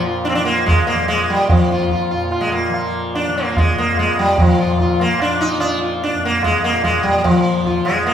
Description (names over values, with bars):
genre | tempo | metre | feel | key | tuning
indian classical, Hindustani | 146 BPM | 7/4 | straight | F raga bageshri | A4 = 440 Hz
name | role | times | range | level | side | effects
sitar | melody | 0.0-8.1 s | F3 to F4 | -16 LUFS | equal | none
tanpura | drone | 0.0-8.1 s | F2 to F3 | -24 LUFS | equal | none
tabla | percussion | 0.3-8.1 s | none | -21 LUFS | right 1 dB | none
room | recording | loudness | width
wet large studio reverb, RT60 1.2 s | band playing live in one room | -14 LUFS | side -9 dB against mid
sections
0.0-8.1 A section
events
none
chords
none